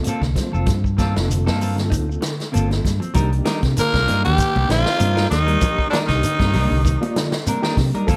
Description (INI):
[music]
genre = afrobeat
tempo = 97 BPM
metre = 4/4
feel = swing 54% on 16ths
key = C dorian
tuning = A4 = 440 Hz
[part]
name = mellow reed electric piano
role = accompaniment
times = 0.0-8.2 s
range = Bb3 to D5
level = -32 LUFS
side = equal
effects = fast tremolo
[part]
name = mellow electric guitar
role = arpeggios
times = 0.0-8.2 s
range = C3 to Eb4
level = -30 LUFS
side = equal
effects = spring reverb
[part]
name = vintage drum kit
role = drums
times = 0.0-8.2 s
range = hi-hat, kick drum, snare drum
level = -26 LUFS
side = equal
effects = none
[part]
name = clean electric guitar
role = stabs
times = 0.1-8.2 s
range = G3 to Bb4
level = -31 LUFS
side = equal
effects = none
[part]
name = congas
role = percussion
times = 0.1-8.2 s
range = none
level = -31 LUFS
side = equal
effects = none
[part]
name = shekere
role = percussion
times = 0.1-8.2 s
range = none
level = -29 LUFS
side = equal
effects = none
[part]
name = fingered electric bass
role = bass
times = 0.2-8.2 s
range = F1 to C3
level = -22 LUFS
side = equal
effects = none
[part]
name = raspy tenor saxophone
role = melody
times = 3.8-7.3 s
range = D4 to Bb4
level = -23 LUFS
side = equal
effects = none
[part]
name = bright baritone saxophone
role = second line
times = 3.8-7.3 s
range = D2 to Bb2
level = -33 LUFS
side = equal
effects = none
[part]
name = raspy tenor saxophone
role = second line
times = 3.8-7.3 s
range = D3 to Bb3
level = -32 LUFS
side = equal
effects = none
[sound]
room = light reverb, studio ambience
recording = none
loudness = -19 LUFS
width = mono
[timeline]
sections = 0.0-3.2 A section; 3.2-8.2 B section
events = none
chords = 0.0 Gm11; 3.2 Cm9